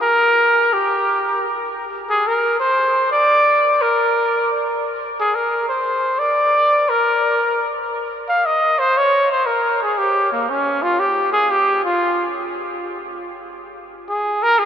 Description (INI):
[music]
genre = jazz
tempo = 117 BPM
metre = 4/4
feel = swing 67% on 8ths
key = Bb mixolydian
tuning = A4 = 441 Hz
[part]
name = warm trumpet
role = solo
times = 0.0-14.7 s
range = Bb3 to F5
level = -15 LUFS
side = equal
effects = none
[sound]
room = wet huge ambient reverb, RT60 7.6 s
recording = in a vast, echoing space, faint mains hum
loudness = -15 LUFS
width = side -9 dB against mid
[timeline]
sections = 0.0-14.7 A section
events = none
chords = none